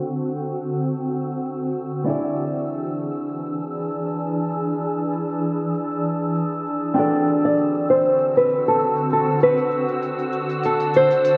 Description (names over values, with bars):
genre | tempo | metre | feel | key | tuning
sunset chillout | 98 BPM | 4/4 | swing 55% on 16ths | unclear | A4 = 440 Hz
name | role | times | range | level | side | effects
nylon-string guitar | accompaniment | 0.0-11.4 s | B3 to D5 | -28 LUFS | equal | delay
shimmering ambient pad | sustained chords | 0.0-11.4 s | D3 to G#4 | -27 LUFS | equal | chorus, built-in reverb
wind-like tuned noise texture | texture | 0.3-11.4 s | E6 | -36 LUFS | equal | built-in reverb
electronic hi-hat and shaker | drums | 0.1-11.4 s | none | -55 LUFS | equal | none
nylon-string guitar | melody | 7.4-11.4 s | A4 to D5 | -20 LUFS | equal | delay
room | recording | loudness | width
wet lush hall reverb, RT60 1.7 s | bright 1980s-style digital production, low-pass filter | -22 LUFS | mono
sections
0.0-11.4 A section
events
filter sweep 0.0-11.4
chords
0.0 D7; 2.1 E7; 7.0 D7